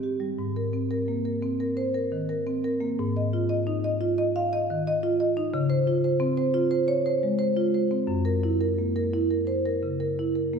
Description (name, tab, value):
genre	classical, contemporary piece for solo marimba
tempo	116 BPM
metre	5/4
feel	straight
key	Ab major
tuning	A4 = 440 Hz
part	marimba with medium mallets	solo	0.0-10.6 s	Gb2 to F5	-23 LUFS	equal	none
room	wet recital hall reverb, RT60 1.7 s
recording	heard from further back in the room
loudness	-23 LUFS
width	side -6 dB against mid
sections	0.4-10.6 A section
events	none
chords	0.4 Abadd9; 3.0 Fm7/Ab; 5.5 Dbmaj7; 8.1 Gb7